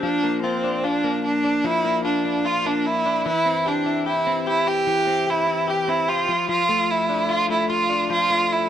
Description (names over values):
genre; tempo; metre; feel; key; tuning
indie pop; 149 BPM; 4/4; straight; unclear; A4 = 440 Hz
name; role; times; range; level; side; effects
warm violin; melody; 0.0-8.7 s; C4 to G4; -20 LUFS; right 2 dB; none
direct-recorded clean electric guitar; arpeggios; 0.0-8.7 s; E3 to G4; -25 LUFS; left 6 dB; wide subtle chorus
room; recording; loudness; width
moderate studio reverb, RT60 0.9 s; none; -19 LUFS; side -10 dB against mid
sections
0.0-8.7 A section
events
none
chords
0.0 Bb; 3.3 C; 6.3 Dm